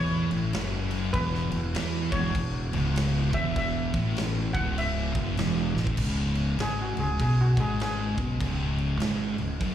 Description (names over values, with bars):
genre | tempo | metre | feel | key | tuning
stoner and doom metal | 99 BPM | 4/4 | swing 62% on 8ths | C# minor | A4 = 443 Hz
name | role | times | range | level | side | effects
steel pan | melody | 0.0-9.6 s | F#4 to F#5 | -34 LUFS | equal | slapback echo, analog delay
mellow tonewheel organ | sustained chords | 0.0-9.7 s | C#3 to B4 | -40 LUFS | right 1 dB | overdrive, chorus vibrato, slow rotary speaker
sludgy distorted guitar | riff | 0.0-9.7 s | C#2 to E3 | -35 LUFS | equal | none
thick fuzz guitar | riff | 0.0-9.7 s | C#2 to E3 | -31 LUFS | left 6 dB | distortion
thick fuzz guitar | riff | 0.0-9.7 s | C#2 to E3 | -32 LUFS | right 6 dB | distortion, slapback echo
fuzz fingered electric bass | bass | 0.0-9.7 s | C#1 to E2 | -30 LUFS | equal | overdrive
big rock drum kit | drums | 0.3-9.7 s | crash cymbal, kick drum, snare drum | -32 LUFS | equal | none
room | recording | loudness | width
small room ambience | live gig heard through the venue's PA, club reverb | -24 LUFS | side -10 dB against mid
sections
0.0-6.0 A section; 6.0-9.7 B section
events
drum fill 5.7-6.0; steel pan solo 6.0-9.7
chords
0.0 A5; 1.1 E5; 6.0 C#5